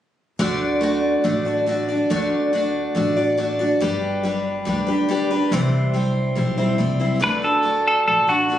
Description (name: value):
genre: honky-tonk and classic country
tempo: 141 BPM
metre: 4/4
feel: straight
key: D mixolydian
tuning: A4 = 440 Hz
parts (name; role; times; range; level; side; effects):
- picked steel-string acoustic guitar; accompaniment; 0.4-8.6 s; C3 to D5; -20 LUFS; equal; none
- upright bass; bass; 0.4-8.6 s; G1 to D2; -26 LUFS; equal; none
- clean electric guitar; melody; 7.2-8.6 s; F#4 to B4; -16 LUFS; equal; tape echo
room: light reverb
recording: recorded on a phone in the room, studio reverb, compression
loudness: -18 LUFS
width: side -11 dB against mid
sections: 0.4-7.2 A section; 7.2-8.6 B section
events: none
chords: 0.4 D; 3.8 G; 5.5 C; 7.2 D